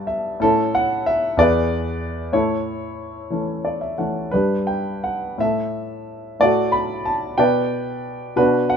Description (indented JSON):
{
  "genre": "classical, lyrical solo piano",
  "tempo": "56-63 BPM (dotted quarters)",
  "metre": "6/8",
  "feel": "rubato",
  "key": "unclear",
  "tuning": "A4 = 440 Hz",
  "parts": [
    { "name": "warm grand piano", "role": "solo", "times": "0.0-8.8 s", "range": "E2 to B5", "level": "-18 LUFS", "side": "equal", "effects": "none" }
  ],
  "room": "light reverb",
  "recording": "minimal, uncompressed stereo recording",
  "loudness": "-18 LUFS",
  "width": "side -7 dB against mid",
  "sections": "0.0-8.8 A section",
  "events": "grand piano fill 0.0-0.4, 3.3-4.3",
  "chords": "0.4 A; 1.4 E7; 2.3 A; 4.3 G5; 5.4 N.C.; 6.4 Bm7/A; 7.4 G/B"
}